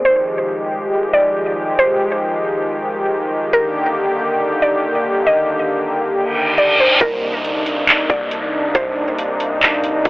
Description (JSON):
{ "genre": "hip hop, atmospheric cloud-rap", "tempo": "138 BPM", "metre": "4/4", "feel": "half-time", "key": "C minor", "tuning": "A4 = 440 Hz", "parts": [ { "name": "mallet-like synth pluck", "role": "melody", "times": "0.0-10.1 s", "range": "Bb4 to Eb5", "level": "-18 LUFS", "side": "equal", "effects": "chorus, low-pass filter, digital delay" }, { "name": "warm analog pad", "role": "sustained chords", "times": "0.1-10.1 s", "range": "C3 to G4", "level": "-18 LUFS", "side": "equal", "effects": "chorus, sidechain pumping, low-pass filter" }, { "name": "reverse cymbal and downlifter", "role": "sound effects", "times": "6.3-10.1 s", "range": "none", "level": "-19 LUFS", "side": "equal", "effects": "none" }, { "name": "long sustained 808-style bass", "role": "bass", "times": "7.0-10.1 s", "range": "C2", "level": "-32 LUFS", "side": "equal", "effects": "none" }, { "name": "trap drum kit", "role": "drums", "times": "7.0-10.1 s", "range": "handclaps, hi-hat, kick drum", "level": "-14 LUFS", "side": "equal", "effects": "none" } ], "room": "light reverb", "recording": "blown-out, overdriven recording, overdrive, telephone sound", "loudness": "-14 LUFS", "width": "side -22 dB against mid", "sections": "0.0-7.0 A section; 7.0-10.1 B section", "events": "reverse cymbal 6.3-7.0", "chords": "0.1 Fm9; 3.5 Ebmaj7; 7.0 Cm9" }